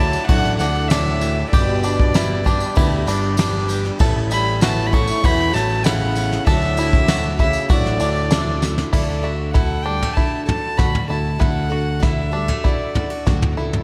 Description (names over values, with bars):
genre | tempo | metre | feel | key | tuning
indie folk with a building arrangement | 97 BPM | 4/4 | straight | D major | A4 = 440 Hz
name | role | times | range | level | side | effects
warm fiddle | melody | 0.0-13.3 s | D5 to C#6 | -26 LUFS | equal | slapback echo, digital delay
warm French horn | second line | 0.0-8.6 s | A2 to A3 | -30 LUFS | equal | slapback echo
picked plugged-in twelve-string acoustic guitar | accompaniment | 0.0-13.8 s | G2 to A4 | -30 LUFS | equal | slapback echo
mellow tonewheel organ | sustained chords | 0.0-8.9 s | F#4 to D6 | -35 LUFS | equal | none
bluegrass banjo | arpeggios | 0.0-13.8 s | D4 to A4 | -29 LUFS | equal | slapback echo, digital delay
picked electric bass | bass | 0.0-13.8 s | G1 to E2 | -25 LUFS | equal | none
tambourine | percussion | 0.1-8.8 s | none | -38 LUFS | equal | none
soft brush drum kit | drums | 0.3-13.8 s | crash cymbal, kick drum, ride cymbal, snare drum, toms | -22 LUFS | equal | none
fingerpicked steel-string acoustic guitar | accompaniment | 8.9-13.8 s | D2 to F#4 | -33 LUFS | equal | slapback echo
room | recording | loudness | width
moderate lush hall reverb, RT60 1.8 s | big arena sound | -18 LUFS | mono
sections
0.0-8.9 A section; 8.9-13.8 B section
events
drum fill 8.6-8.9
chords
0.0 Dadd9; 1.5 G; 4.0 Aadd9; 6.5 Dadd9; 8.9 D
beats
0.29 0.91 | 1.53 2.15 2.77 3.39 | 4.00 4.62 5.24 5.85 | 6.47 7.08 7.70 8.31 | 8.93 9.55 10.17 10.79 | 11.40 12.03 12.64 13.27